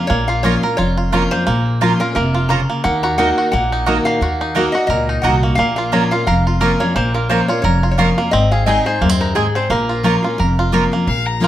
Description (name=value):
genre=bluegrass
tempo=175 BPM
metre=4/4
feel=swing 56% on 8ths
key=Bb minor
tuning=A4 = 439 Hz
part: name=lap resonator guitar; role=melody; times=0.0-10.7 s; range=Ab4 to Bb5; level=-21 LUFS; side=left 1 dB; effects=plate reverb, tape echo
part: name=picked steel-string acoustic guitar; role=accompaniment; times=0.0-11.5 s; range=F2 to Ab4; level=-18 LUFS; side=left 2 dB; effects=none
part: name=bluegrass banjo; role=arpeggios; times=0.0-11.5 s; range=Bb3 to Bb4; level=-20 LUFS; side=right 3 dB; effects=none
part: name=upright bass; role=bass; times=0.1-11.5 s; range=F1 to Eb2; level=-20 LUFS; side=equal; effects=none
part: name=mandolin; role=stabs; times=0.4-10.8 s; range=Bb3 to Bb5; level=-21 LUFS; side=right 6 dB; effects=none
part: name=clear fiddle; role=second line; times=11.1-11.5 s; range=F5 to Bb5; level=-20 LUFS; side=left 4 dB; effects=none
room=moderate studio reverb, RT60 0.8 s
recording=none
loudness=-14 LUFS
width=side -12 dB against mid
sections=0.0-11.1 A section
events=none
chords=0.0 Bbm; 2.8 Ebm; 5.6 Bbm; 8.3 Ab; 9.7 Bbm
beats=| 0.10 0.44 0.78 1.12 | 1.47 1.81 2.15 2.50 | 2.84 3.18 3.52 3.87 | 4.21 4.55 4.90 5.24 | 5.58 5.92 6.27 6.61 | 6.96 7.30 7.64 7.99 | 8.33 8.67 9.02 9.36 | 9.70 10.05 10.39 10.74 | 11.08 11.43